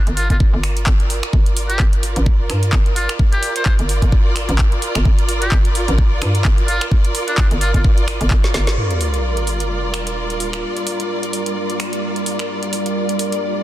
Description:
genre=bass house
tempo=129 BPM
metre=4/4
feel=swing 56% on 16ths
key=G minor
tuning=A4 = 442 Hz
part: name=trumpet with metal mute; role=melody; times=0.0-7.8 s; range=D4 to C5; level=-24 LUFS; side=left 1 dB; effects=ping-pong delay
part: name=rich symphonic string section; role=texture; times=0.0-13.6 s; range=G3 to D5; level=-24 LUFS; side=right 1 dB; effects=sidechain pumping
part: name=hollow knocking FM bass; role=bass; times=0.1-8.8 s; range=G1 to G2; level=-20 LUFS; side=equal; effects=overdrive, sidechain pumping
part: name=garage drum kit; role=drums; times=0.1-13.4 s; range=finger snaps, handclaps, hi-hat, snare drum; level=-24 LUFS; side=equal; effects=soft clipping on snare
part: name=electronic kick drum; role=drums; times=0.3-8.4 s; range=none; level=-14 LUFS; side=equal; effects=none
part: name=deep dark ambient pad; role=sustained chords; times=10.0-13.6 s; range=G3 to D5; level=-24 LUFS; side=equal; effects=chorus, built-in reverb, sidechain pumping
part: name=sub drop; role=sound effects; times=8.8-10.6 s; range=none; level=-22 LUFS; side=equal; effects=none
room=light reverb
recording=dense, heavily limited modern master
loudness=-15 LUFS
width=side -14 dB against mid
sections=0.0-8.8 A section; 8.8-13.6 B section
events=fade-in on string section 0.0-8.8; drum fill 8.4-8.8; band accent 8.7; impact 8.8-10.6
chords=0.0 Gm

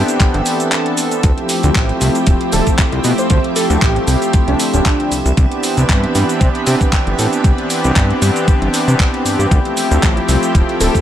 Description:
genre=nu-disco, nu disco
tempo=116 BPM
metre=4/4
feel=swing 55% on 16ths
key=C major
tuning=A4 = 440 Hz
part: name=warm analog pad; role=accompaniment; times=0.0-11.0 s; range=E3 to A4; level=-18 LUFS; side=equal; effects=chorus, sidechain pumping, tape echo
part: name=string machine, full ensemble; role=sustained chords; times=0.0-11.0 s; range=F3 to E5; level=-23 LUFS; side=equal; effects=ensemble chorus, sidechain pumping
part: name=fat analog bass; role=bass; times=0.0-10.9 s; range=D1 to C3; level=-15 LUFS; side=equal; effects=sidechain pumping
part: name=pop drum kit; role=drums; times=0.1-11.0 s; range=handclaps, hi-hat, shaker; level=-21 LUFS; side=equal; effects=small room ambience
part: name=electronic kick drum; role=drums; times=0.2-11.0 s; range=none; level=-14 LUFS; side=equal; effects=small room ambience
part: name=wide unison lead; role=melody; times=2.5-5.1, 10.8-10.9 s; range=D4 to C5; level=-21 LUFS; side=equal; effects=tape echo
room=little or no reverb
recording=none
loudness=-12 LUFS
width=side -11 dB against mid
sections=0.0-11.0 A section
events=none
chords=0.0 Cmaj7; 1.2 Dm11; 5.1 Cmaj7; 9.5 Dm11

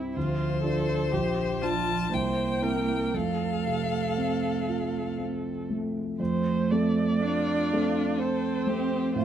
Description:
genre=classical, slow romantic movement for piano quartet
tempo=60 BPM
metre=3/4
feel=uneven beats, rubato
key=F major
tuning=A4 = 440 Hz
part: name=rich viola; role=accompaniment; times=0.0-9.2 s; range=E4 to D5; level=-33 LUFS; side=right 1 dB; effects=none
part: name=warm concert grand piano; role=accompaniment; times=0.0-9.2 s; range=Bb1 to A4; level=-28 LUFS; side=equal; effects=none
part: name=rich violin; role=melody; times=0.2-9.2 s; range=F4 to A5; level=-33 LUFS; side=left 7 dB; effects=none
part: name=rich cello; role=second line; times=0.2-9.2 s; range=F3 to D4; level=-31 LUFS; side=right 5 dB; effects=none
room=light reverb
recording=close, detailed microphones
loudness=-25 LUFS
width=side -10 dB against mid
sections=0.0-6.2 A section; 6.2-9.2 B section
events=none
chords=0.2 Dm7; 1.1 Bb; 2.1 C7; 3.1 F

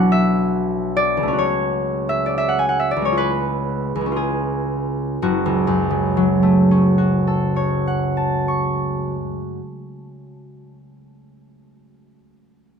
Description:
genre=classical, solo harp piece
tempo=54-73 BPM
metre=4/4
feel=rubato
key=F# minor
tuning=A4 = 440 Hz
part: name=concert harp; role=solo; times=0.0-10.8 s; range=F#1 to C#6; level=-17 LUFS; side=equal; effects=none
room=light reverb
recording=close, detailed microphones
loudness=-17 LUFS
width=side -6 dB against mid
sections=0.0-5.2 A section; 5.2-9.3 B section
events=slowing down 0.0-5.2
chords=0.0 Bm; 1.4 F#m/C#; 3.2 C#7; 5.2 F#m

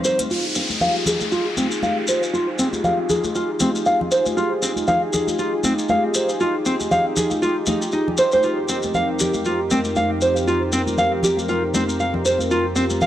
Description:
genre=afro house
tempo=118 BPM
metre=4/4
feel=swing 57% on 16ths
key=F minor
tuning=A4 = 440 Hz
part: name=warm analog pad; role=sustained chords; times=0.0-13.1 s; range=F2 to C5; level=-24 LUFS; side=equal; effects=chorus
part: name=nylon-string guitar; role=arpeggios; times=0.0-13.1 s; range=C4 to F5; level=-20 LUFS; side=right 1 dB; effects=low-pass filter, analog delay
part: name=shekere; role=percussion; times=0.0-13.1 s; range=none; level=-28 LUFS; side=left 2 dB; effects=none
part: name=congas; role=percussion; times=0.2-13.1 s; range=none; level=-28 LUFS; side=left 2 dB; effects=none
part: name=downlifter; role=sound effects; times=0.3-4.4 s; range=none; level=-29 LUFS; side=left 1 dB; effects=none
room=light reverb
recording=dry, gritty hardware recording, cassette tape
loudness=-18 LUFS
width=side -12 dB against mid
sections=0.3-13.1 A section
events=filter sweep on nylon-string guitar 0.3-13.1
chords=0.3 Fm9; 8.4 Eb6/F

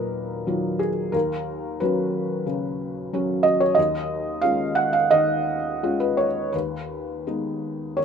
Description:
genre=neoclassical minimalist piano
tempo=82-92 BPM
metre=4/4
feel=rubato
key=unclear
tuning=A4 = 440 Hz
part: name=felt-muted upright piano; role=solo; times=0.0-8.0 s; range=Eb2 to Gb5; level=-21 LUFS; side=right 1 dB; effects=none
room=light reverb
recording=minimal, uncompressed stereo recording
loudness=-21 LUFS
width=side -7 dB against mid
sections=0.0-8.0 A section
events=none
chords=0.0 Ebmadd9; 1.1 Bsus2/Eb; 3.8 Dbadd9/Eb; 6.5 Abm/Eb

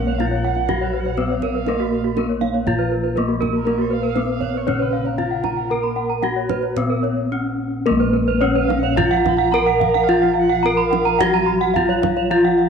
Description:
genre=Balinese gamelan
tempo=108-121 BPM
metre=4/4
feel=straight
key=Bb pelog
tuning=A4 = 441 Hz
part: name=gamelan-type bronze metallophone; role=melody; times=0.0-12.7 s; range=Bb3 to Bb4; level=-21 LUFS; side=left 1 dB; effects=none
part: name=dark erhu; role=second line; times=0.0-11.9 s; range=Bb4 to Cb6+39c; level=-32 LUFS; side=right 12 dB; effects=none
part: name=gamelan-type bronze metallophone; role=accompaniment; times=0.0-12.7 s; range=Db3 to Cb4+35c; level=-29 LUFS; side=right 2 dB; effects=none
part: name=gamelan-type bronze metallophone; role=arpeggios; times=0.0-12.7 s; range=Gb4 to Cb6+35c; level=-25 LUFS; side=left 11 dB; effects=none
part: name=gamelan-type bossed gongs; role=bass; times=0.0-12.7 s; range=Bb1 to Bb4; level=-23 LUFS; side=left 1 dB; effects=transformer saturation
part: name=gamelan-type bronze metallophone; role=arpeggios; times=0.1-12.6 s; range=Gb4 to Cb6+35c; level=-24 LUFS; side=right 12 dB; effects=slapback echo
part: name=kendang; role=percussion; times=0.2-12.5 s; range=none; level=-28 LUFS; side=right 8 dB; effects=none
room=light reverb, studio reverb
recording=1960s-style stereo with parts hard left and right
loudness=-17 LUFS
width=side -6 dB against mid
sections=0.0-7.9 A section; 7.9-12.7 B section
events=break 7.0-7.9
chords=none

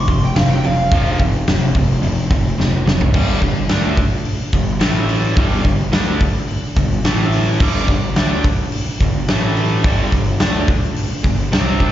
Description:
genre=hard rock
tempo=108 BPM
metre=4/4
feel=straight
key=unclear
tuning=A4 = 438 Hz
part: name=lead guitar through a small cranked amp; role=melody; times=0.0-1.2, 11.8-11.9 s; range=D4 to C6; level=-22 LUFS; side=right 2 dB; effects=overdrive, slapback echo, analog delay
part: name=overdriven electric guitar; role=riff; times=0.0-11.9 s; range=F2 to D4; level=-20 LUFS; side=equal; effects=spring reverb, slapback echo
part: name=fuzz fingered electric bass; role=bass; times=0.0-11.9 s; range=F1 to D2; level=-20 LUFS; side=equal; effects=overdrive
part: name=huge arena drum kit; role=drums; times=0.1-11.9 s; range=crash cymbal, hi-hat, kick drum, snare drum, toms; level=-17 LUFS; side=equal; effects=none
room=light reverb, small room ambience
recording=live gig heard through the venue's PA, recital hall reverb, nothing above 7.5 kHz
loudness=-14 LUFS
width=side -12 dB against mid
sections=0.0-3.1 A section; 3.1-11.9 B section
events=lead electric guitar solo 0.0-3.1; drum fill 2.6-3.1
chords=0.0 F5; 3.1 G5; 4.8 A5; 5.4 G5; 7.1 A5; 7.6 G5; 9.3 A5; 9.8 G5

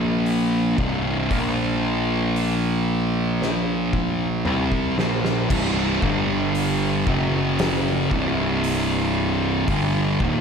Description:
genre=stoner and doom metal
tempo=57 BPM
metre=4/4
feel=straight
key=unclear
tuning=A4 = 440 Hz
part: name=thick fuzz guitar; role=riff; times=0.0-10.4 s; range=C2 to C4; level=-21 LUFS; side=right 1 dB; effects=distortion
part: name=fuzz picked electric bass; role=bass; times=0.0-10.4 s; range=C1 to C2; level=-27 LUFS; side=equal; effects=overdrive, tube saturation
part: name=oversized low-tuned drum kit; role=drums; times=0.3-10.4 s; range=crash cymbal, hi-hat, kick drum, snare drum, toms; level=-27 LUFS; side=left 1 dB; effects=none
room=light reverb, small room ambience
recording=none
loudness=-19 LUFS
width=side -6 dB against mid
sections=0.0-5.5 A section; 5.5-10.4 B section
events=drum fill 3.4-5.5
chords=0.0 Bb5; 0.8 C5; 1.3 Bb5; 4.5 C5; 6.0 G5; 7.1 F#5; 8.1 Cm

